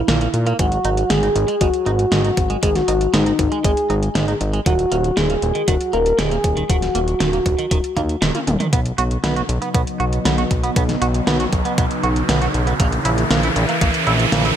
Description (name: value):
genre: synthwave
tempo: 118 BPM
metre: 4/4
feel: straight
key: unclear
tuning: A4 = 436 Hz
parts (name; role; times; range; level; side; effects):
- soft octave-layered synth lead; melody; 0.0-8.2 s; D#4 to A#4; -20 LUFS; left 1 dB; chorus, digital delay
- fat analog bass; bass; 0.0-14.5 s; D#1 to A#2; -21 LUFS; equal; sidechain pumping
- clean electric guitar; riff; 0.1-14.5 s; D#3 to F#4; -26 LUFS; right 5 dB; analog chorus, low-pass filter, digital delay
- pop drum kit; drums; 0.1-14.6 s; hi-hat, snare drum, toms; -22 LUFS; equal; gated reverb
- electronic kick drum; drums; 0.6-13.9 s; none; -20 LUFS; equal; overdrive
- chorused pulse-width pad; sustained chords; 8.7-14.6 s; C#3 to E4; -24 LUFS; equal; sidechain pumping
- riser; sound effects; 10.7-14.6 s; none; -24 LUFS; right 1 dB; none
room: light reverb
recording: none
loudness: -16 LUFS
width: side -9 dB against mid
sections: 0.0-8.7 A section; 8.7-14.6 B section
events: drum fill 8.3-8.7; filter sweep on analog synth pad 8.7-14.6; riser 10.7-14.6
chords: 0.0 A#(b5, no3); 0.6 G#5; 4.7 D#m; 8.7 Badd9; 12.8 A#dim